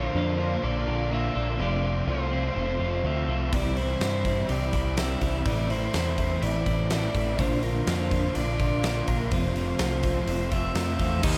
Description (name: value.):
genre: rock, shoegaze and dream pop.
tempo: 124 BPM.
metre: 4/4.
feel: straight.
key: unclear.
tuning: A4 = 440 Hz.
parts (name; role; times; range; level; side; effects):
reedy FM lead; melody; 0.0-11.4 s; Bb4 to E5; -34 LUFS; equal; chorus, diffuse ambient delay.
twelve-string electric guitar; arpeggios; 0.0-11.4 s; Eb3 to A4; -39 LUFS; equal; none.
overdriven electric guitar; riff; 0.0-11.4 s; F2 to G4; -34 LUFS; equal; ensemble chorus.
overdriven semi-hollow guitar; riff; 0.0-11.4 s; F2 to G4; -35 LUFS; equal; reverse reverb.
growling picked electric bass; bass; 0.0-11.4 s; F1 to G2; -31 LUFS; equal; overdrive.
huge arena drum kit; drums; 3.5-11.3 s; crash cymbal, hi-hat, kick drum, snare drum; -32 LUFS; equal; none.
room: wet lush hall reverb, RT60 2.2 s.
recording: dreamy mix soaked in reverb, faint mains hum.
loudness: -26 LUFS.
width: mono.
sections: 0.0-11.2 A section.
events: none.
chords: 0.0 Bbmaj7; 1.6 F; 3.5 C; 5.5 Am; 7.4 Bb; 9.3 F.